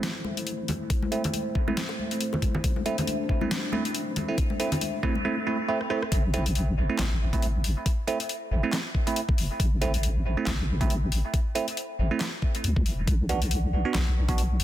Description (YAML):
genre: deep dubstep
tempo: 138 BPM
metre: 4/4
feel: swing 57% on 16ths, half-time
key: A minor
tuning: A4 = 440 Hz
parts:
  - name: dark analog pad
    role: sustained chords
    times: 0.1-5.2 s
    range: A3 to C5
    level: -34 LUFS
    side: left 1 dB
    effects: chorus
  - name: bell-like tine electric piano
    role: stabs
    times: 0.0-14.4 s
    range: A3 to F#4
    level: -30 LUFS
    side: right 4 dB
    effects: phaser, low-pass filter, dub echo
  - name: deep soft wobble bass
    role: bass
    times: 0.0-14.6 s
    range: E1 to D2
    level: -27 LUFS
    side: equal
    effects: chorus, high-pass filter
  - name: dubstep drum kit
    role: drums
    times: 0.0-14.6 s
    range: handclaps, hi-hat, rim click, snare drum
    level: -32 LUFS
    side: left 2 dB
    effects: overdrive
  - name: bongos and congas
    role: percussion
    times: 0.2-5.2 s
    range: none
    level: -33 LUFS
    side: left 2 dB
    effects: dub echo
  - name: electronic kick drum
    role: drums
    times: 0.9-14.4 s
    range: none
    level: -26 LUFS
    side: equal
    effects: overdrive
room: light reverb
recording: dense, heavily limited modern master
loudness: -24 LUFS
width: side -13 dB against mid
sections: 0.0-6.1 A section; 6.1-14.6 B section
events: build-up 0.0-6.1; filter sweep on tine electric piano 0.0-6.1; drum fill 5.8-6.1; drop 6.1-14.6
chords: 0.0 Am; 13.1 Bm